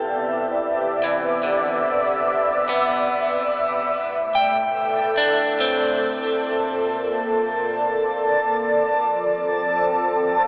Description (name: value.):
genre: ambient.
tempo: 72 BPM.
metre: 3/4.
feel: straight.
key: A minor.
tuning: A4 = 442 Hz.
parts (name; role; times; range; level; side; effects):
warm analog pad; sustained chords; 0.0-10.5 s; A2 to A5; -20 LUFS; equal; chorus.
electric guitar at the edge of break-up; arpeggios; 0.0-9.6 s; D3 to G5; -24 LUFS; equal; diffuse ambient delay.
round analog bass; bass; 0.0-10.5 s; F1 to C2; -56 LUFS; equal; none.
backwards swelling texture; texture; 5.0-10.5 s; A5; -26 LUFS; equal; built-in reverb.
room: wet shimmer reverb, RT60 8.5 s.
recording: worn, warbling old tape, cassette tape, warbly pitch drift, telephone sound.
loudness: -18 LUFS.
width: side -35 dB against mid.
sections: 0.0-3.9 A section; 3.9-10.5 B section.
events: none.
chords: 0.0 Cmaj9; 3.9 Am; 6.4 Bbadd9; 8.9 F.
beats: 0.60 | 1.44 2.27 3.10 | 3.94 4.77 5.60 | 6.44 7.27 8.10 | 8.94 9.77.